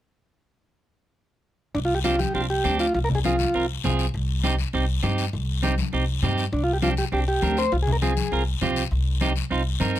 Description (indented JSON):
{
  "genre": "latin, cumbia",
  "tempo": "201 BPM",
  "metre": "4/4",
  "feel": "straight",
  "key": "C minor",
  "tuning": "A4 = 438 Hz",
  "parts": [
    { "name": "combo organ", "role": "melody", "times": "1.7-3.7, 6.5-8.4 s", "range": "D4 to C5", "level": "-24 LUFS", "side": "equal", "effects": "none" },
    { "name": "upright bass", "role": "bass", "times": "1.7-10.0 s", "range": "C2 to G2", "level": "-25 LUFS", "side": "equal", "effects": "none" },
    { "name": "guiro", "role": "percussion", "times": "1.7-10.0 s", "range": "none", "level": "-34 LUFS", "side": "left 10 dB", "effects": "none" },
    { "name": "clean electric guitar", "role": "accompaniment", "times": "2.0-10.0 s", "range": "C4 to Bb4", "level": "-26 LUFS", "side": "right 4 dB", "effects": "none" },
    { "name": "congas", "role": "percussion", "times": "2.0-10.0 s", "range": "none", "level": "-30 LUFS", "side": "left 4 dB", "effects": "none" }
  ],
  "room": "light reverb",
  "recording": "close, detailed microphones",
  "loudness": "-21 LUFS",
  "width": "side -13 dB against mid",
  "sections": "1.8-10.0 A section",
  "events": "none",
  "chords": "1.8 Gsus4/C; 2.9 Fm/C; 4.1 Cm; 6.5 Gsus4/C; 7.7 Fm/C; 8.9 Cm",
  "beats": "| 1.75 2.05 2.35 2.65 | 2.95 3.25 3.54 3.84 | 4.14 4.44 4.74 5.04 | 5.33 5.63 5.93 6.23 | 6.53 6.83 7.12 7.42 | 7.72 8.02 8.32 8.62 | 8.91 9.21 9.51 9.81"
}